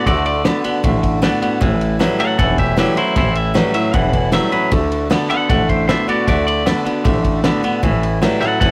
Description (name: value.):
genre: rockabilly.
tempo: 155 BPM.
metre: 4/4.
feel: straight.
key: D major.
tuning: A4 = 440 Hz.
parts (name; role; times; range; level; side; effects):
clean electric guitar; melody; 0.0-8.7 s; E4 to F#5; -21 LUFS; equal; none.
picked steel-string acoustic guitar; accompaniment; 0.0-8.7 s; E2 to F#4; -24 LUFS; equal; none.
twangy electric guitar; riff; 0.0-8.7 s; A2 to B3; -22 LUFS; equal; none.
upright bass; bass; 0.1-8.7 s; E1 to D2; -23 LUFS; equal; none.
cloth-damped thuddy drum kit; drums; 0.1-8.7 s; kick drum, ride cymbal, snare drum; -22 LUFS; equal; none.
room: moderate booth ambience, RT60 0.2 s.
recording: rough rehearsal-room recording.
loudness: -16 LUFS.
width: mono.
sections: 0.0-8.7 A section.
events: none.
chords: 0.0 D; 1.6 A7; 4.7 D; 7.8 A7.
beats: | 0.07 0.45 0.84 1.23 | 1.62 2.00 2.39 2.78 | 3.17 3.56 3.94 4.33 | 4.72 5.11 5.50 5.89 | 6.27 6.66 7.05 7.44 | 7.83 8.22 8.61.